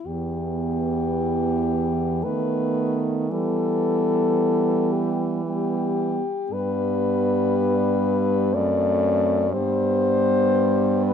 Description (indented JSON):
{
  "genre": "classical, lyrical piece for horn quartet",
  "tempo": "52-60 BPM",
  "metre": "3/4",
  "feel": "rubato",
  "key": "E minor",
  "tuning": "A4 = 441 Hz",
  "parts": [
    { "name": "warm French horn", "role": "melody", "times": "0.0-11.1 s", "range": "G4 to D5", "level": "-24 LUFS", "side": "left 7 dB", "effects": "none" },
    { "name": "mellow French horn", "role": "second line", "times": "0.1-11.1 s", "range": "B3 to C4", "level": "-26 LUFS", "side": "right 9 dB", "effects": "none" },
    { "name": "mellow French horn", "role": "accompaniment", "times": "0.1-11.1 s", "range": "E3 to A3", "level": "-27 LUFS", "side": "equal", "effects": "none" },
    { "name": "clear French horn", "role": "bass", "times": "0.1-11.1 s", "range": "E2 to E3", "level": "-28 LUFS", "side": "right 2 dB", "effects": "none" }
  ],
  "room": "moderate recital hall reverb, RT60 1.3 s",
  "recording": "dark, warm production",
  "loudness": "-20 LUFS",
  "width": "side -8 dB against mid",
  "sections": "0.1-11.1 A section",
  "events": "none",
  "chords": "0.0 E5; 2.2 B7/D#; 3.3 Em; 6.5 G; 8.5 D7/F#; 9.5 G"
}